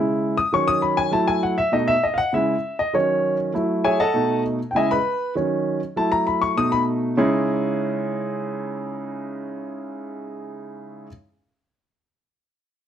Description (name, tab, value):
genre	jazz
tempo	198 BPM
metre	4/4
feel	straight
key	C# minor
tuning	A4 = 440 Hz
part	clear upright piano	accompaniment	0.0-11.1 s	B2 to D#6	-20 LUFS	equal	none
room	moderate studio reverb, RT60 0.7 s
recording	none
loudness	-19 LUFS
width	side -9 dB against mid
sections	0.0-7.2 A section; 7.2-9.6 B section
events	upright piano solo 0.0-7.2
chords	0.0 C#m; 0.5 D#m7; 1.1 F#m7; 1.7 B7; 2.3 C#m; 2.9 D#m7; 3.5 F#m9; 4.1 B7; 4.8 C#madd9; 5.4 D#m7; 6.0 F#m7; 6.6 B7; 7.2 C#madd9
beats	0.22 0.53 0.83 | 1.13 1.43 1.73 2.03 | 2.34 2.64 2.94 3.24 | 3.54 3.85 4.15 4.45 | 4.75 5.06 5.36 5.66 | 5.96 6.27 6.57 6.87 | 7.18 7.48 7.78 8.09 | 8.39 8.69 9.00 9.30